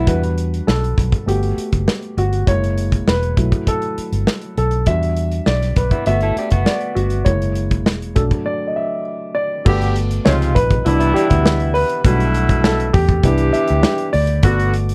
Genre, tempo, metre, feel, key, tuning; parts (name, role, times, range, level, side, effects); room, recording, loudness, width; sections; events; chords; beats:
lush 1970s-style soul; 100 BPM; 4/4; straight; E minor; A4 = 439 Hz
dark grand piano; accompaniment; 0.0-14.9 s; B#2 to E5; -23 LUFS; equal
electric guitar through a small old amp; riff; 0.0-0.2, 5.9-7.2, 11.0-12.0 s; B3 to A4; -26 LUFS; equal
vintage muted fingered electric bass; bass; 0.0-14.9 s; E1 to E2; -21 LUFS; equal
modern studio drum kit; drums; 0.1-14.9 s; crash cymbal, hi-hat, kick drum, snare drum; -21 LUFS; equal
warm horn section; stabs; 9.7-14.7 s; B2 to G4; -22 LUFS; equal
little or no reverb; -17 LUFS; mono
0.0-9.7 A section; 9.7-14.9 B section
grand piano solo 0.0-9.7, 9.7-14.9; break 8.5-9.7
0.1 Em9; 1.3 Gmaj7; 2.5 F#7; 3.4 B7sus4; 4.9 Em9; 6.1 Gmaj7; 7.3 F#7; 8.2 Bm7 (rootless); 9.7 Gmaj9; 10.3 C#maj9; 10.9 Cmaj9; 12.0 Em11/B; 13.2 Cmaj9; 14.4 Gmaj9
| 0.08 0.68 1.28 1.88 | 2.47 3.07 3.67 4.27 | 4.87 5.47 6.07 6.67 | 7.26 7.86 8.46 9.06 | 9.66 10.25 10.85 11.45 | 12.05 12.64 13.24 13.84 | 14.44